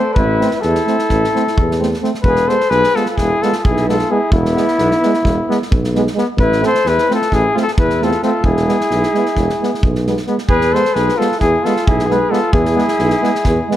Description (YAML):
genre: balkan folk, Balkan brass band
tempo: 262 BPM (eighths)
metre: 9/8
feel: straight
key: unclear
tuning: A4 = 435 Hz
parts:
  - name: mellow cornet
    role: melody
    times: 0.0-13.8 s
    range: E4 to C5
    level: -17 LUFS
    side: left 3 dB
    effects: tape echo
  - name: warm flugelhorn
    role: second line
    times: 0.0-13.8 s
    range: B3 to A4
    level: -22 LUFS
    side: right 4 dB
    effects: none
  - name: warm euphonium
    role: accompaniment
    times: 0.0-13.8 s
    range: G#3 to A3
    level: -23 LUFS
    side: right 6 dB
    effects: none
  - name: warm tuba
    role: bass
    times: 0.2-13.6 s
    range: E1 to E2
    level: -18 LUFS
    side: equal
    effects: none
  - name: unplugged drum kit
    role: percussion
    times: 0.2-13.8 s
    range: kick drum, snare drum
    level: -20 LUFS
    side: equal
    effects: none
  - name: bright trombone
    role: accompaniment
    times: 0.4-13.8 s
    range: B3 to C4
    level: -24 LUFS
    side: left 4 dB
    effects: none
room: light reverb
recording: none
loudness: -13 LUFS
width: side -12 dB against mid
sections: 0.0-10.5 A section; 10.5-13.8 A section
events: none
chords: 0.0 Am; 2.2 E; 6.4 Am; 8.4 E